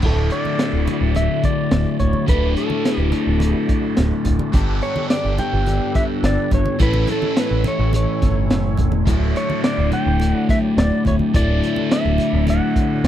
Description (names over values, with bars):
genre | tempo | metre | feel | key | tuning
psychedelic rock | 106 BPM | 4/4 | straight | D major | A4 = 440 Hz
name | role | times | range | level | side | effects
tonewheel organ | sustained chords | 0.0-13.1 s | F#3 to D5 | -32 LUFS | right 6 dB | slow rotary speaker, overdrive, chorus vibrato
crunchy overdriven guitar | riff | 0.0-13.1 s | D2 to A4 | -21 LUFS | left 2 dB | phaser
deep dub picked electric bass | bass | 0.0-13.1 s | D1 to A1 | -19 LUFS | equal | none
crunchy breakbeat drum kit | drums | 0.0-13.1 s | crash cymbal, hi-hat, kick drum, snare drum | -20 LUFS | equal | none
clean lap steel guitar | melody | 0.1-13.1 s | A4 to G5 | -25 LUFS | right 1 dB | tape echo
congas | percussion | 0.5-12.6 s | none | -28 LUFS | right 3 dB | none
room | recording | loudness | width
little or no reverb | dry, close 1970s-style studio recording | -16 LUFS | side -11 dB against mid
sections
0.0-13.1 A section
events
none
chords
0.0 Dadd9; 4.5 Gadd9; 6.8 A; 9.1 Dadd9